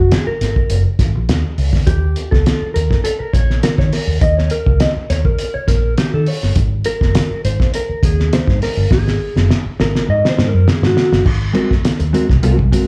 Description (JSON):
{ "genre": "funk", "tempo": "102 BPM", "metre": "4/4", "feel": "straight", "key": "unclear", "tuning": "A4 = 436 Hz", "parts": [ { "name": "mellow electric guitar", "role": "accompaniment", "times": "0.0-12.9 s", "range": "Ab3 to Eb5", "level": "-22 LUFS", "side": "equal", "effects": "slapback echo" }, { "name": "vintage muted fingered electric bass", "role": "bass", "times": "0.0-12.7 s", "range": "Gb1 to Eb3", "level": "-18 LUFS", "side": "equal", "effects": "none" }, { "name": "cloth-damped thuddy drum kit", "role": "drums", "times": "0.1-12.9 s", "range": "crash cymbal, hi-hat, kick drum, snare drum", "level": "-19 LUFS", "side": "equal", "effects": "none" } ], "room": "light reverb", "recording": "live gig heard through the venue's PA, club reverb", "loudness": "-15 LUFS", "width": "mono", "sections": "0.0-11.3 A section; 11.3-12.9 B section", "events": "clean electric guitar solo 0.0-11.3; drum fill 8.9-11.3", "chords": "0.0 Absus2; 1.9 Eb7; 6.6 Absus2; 11.3 Ab9", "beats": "0.11 0.70 1.29 | 1.87 2.46 3.04 3.63 | 4.22 4.80 5.39 5.98 | 6.56 7.15 7.74 8.32 | 8.91 9.50 10.08 10.67 | 11.26 11.85 12.43" }